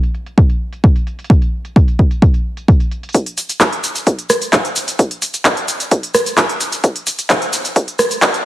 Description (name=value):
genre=techno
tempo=130 BPM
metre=4/4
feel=straight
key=none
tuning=none
part: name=techno drum kit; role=drums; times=0.0-8.4 s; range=handclaps, hi-hat, rim click, shaker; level=-15 LUFS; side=equal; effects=low-pass filter on hats, low-pass filter on perc, low-pass filter on snare, low-pass filter on room
part: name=electronic kick drum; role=drums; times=0.4-8.3 s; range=none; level=-12 LUFS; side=equal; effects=high-pass filter on kick
room=light reverb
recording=heavily compressed radio sound, multiband compression, high-pass filter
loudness=-13 LUFS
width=side -15 dB against mid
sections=0.0-3.1 A section; 3.1-8.4 B section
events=build-up 3.1-8.4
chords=none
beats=0.38 0.84 | 1.30 1.76 2.22 2.68 | 3.15 3.61 4.07 4.53 | 4.99 5.45 5.91 6.38 | 6.84 7.30 7.76 8.22